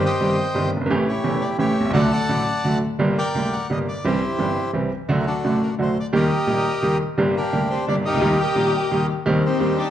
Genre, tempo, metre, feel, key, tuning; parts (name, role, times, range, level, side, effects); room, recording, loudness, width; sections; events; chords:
tango; 173 BPM; 3/4; rubato; G harmonic minor; A4 = 440 Hz
bandoneon; melody; 0.0-9.9 s; D4 to A5; -24 LUFS; equal
bright upright piano; accompaniment; 0.0-9.8 s; E1 to G4; -20 LUFS; right 1 dB
warm studio violin section; second line; 7.3-9.9 s; Bb3 to G4; -24 LUFS; left 4 dB
wet large studio reverb, RT60 1.3 s; dark, warm production; -18 LUFS; side -11 dB against mid
0.0-9.9 A section
0.0 Cm/G; 0.9 A7; 1.9 D; 3.0 Gm; 4.1 C; 5.1 D; 6.1 Eb; 7.2 Gm; 8.2 Eb; 9.3 Cm/Eb